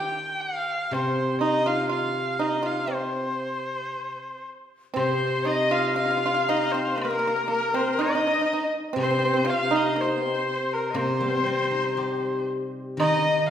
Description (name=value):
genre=chinese traditional, Chinese chamber ensemble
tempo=60 BPM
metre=2/4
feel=rubato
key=C yu mode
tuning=A4 = 440 Hz
part: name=rich erhu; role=melody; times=0.0-13.5 s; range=Bb4 to G5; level=-27 LUFS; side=equal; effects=none
part: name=pipa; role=second line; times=0.0-13.5 s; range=Bb3 to G4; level=-28 LUFS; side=right 3 dB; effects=none
part: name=steel-string zither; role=accompaniment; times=0.0-13.5 s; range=C3 to G4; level=-29 LUFS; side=left 2 dB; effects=none
part: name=bright dizi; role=second line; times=5.0-13.5 s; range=Bb4 to F5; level=-28 LUFS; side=left 4 dB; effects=none
part: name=woodblock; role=percussion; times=5.0-13.2 s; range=none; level=-39 LUFS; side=left 1 dB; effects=none
room=wet recital hall reverb, RT60 1.4 s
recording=recorded in a church or concert hall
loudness=-22 LUFS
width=side -9 dB against mid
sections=0.0-5.0 A section; 5.0-13.5 B section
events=none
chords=none